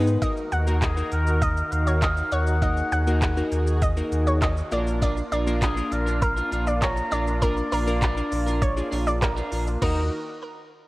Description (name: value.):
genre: dance-pop.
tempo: 100 BPM.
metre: 4/4.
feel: straight.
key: Eb minor.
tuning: A4 = 440 Hz.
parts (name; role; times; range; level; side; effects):
glassy digital keys; accompaniment; 0.0-10.1 s; Bb3 to Bb4; -30 LUFS; left 1 dB; chorus, sidechain pumping.
filtered supersaw swell; sustained chords; 0.0-10.1 s; D#3 to Bb4; -32 LUFS; right 1 dB; sidechain pumping.
electric guitar at the edge of break-up; riff; 0.0-0.1, 5.0-10.0 s; D4 to Bb4; -33 LUFS; right 2 dB; lush chorus.
sub bass with octave; bass; 0.0-10.1 s; Bb1 to Ab2; -25 LUFS; equal; sidechain pumping.
pop drum kit; drums; 0.1-10.0 s; crash cymbal, handclaps, hi-hat, kick drum, shaker; -27 LUFS; equal; none.
analog pluck; melody; 0.2-10.1 s; Bb4 to Gb5; -30 LUFS; right 1 dB; chorus, digital delay.
mellow oboe; melody; 0.8-10.1 s; Ab4 to Bb5; -30 LUFS; left 1 dB; none.
room: light reverb, digital ambience.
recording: worn, warbling old tape, cassette tape, warbly pitch drift.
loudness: -21 LUFS.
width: side -20 dB against mid.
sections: 0.2-9.8 A section; 9.8-10.9 B section.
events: none.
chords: 0.2 Ebm; 4.7 Bb; 9.8 Ebm.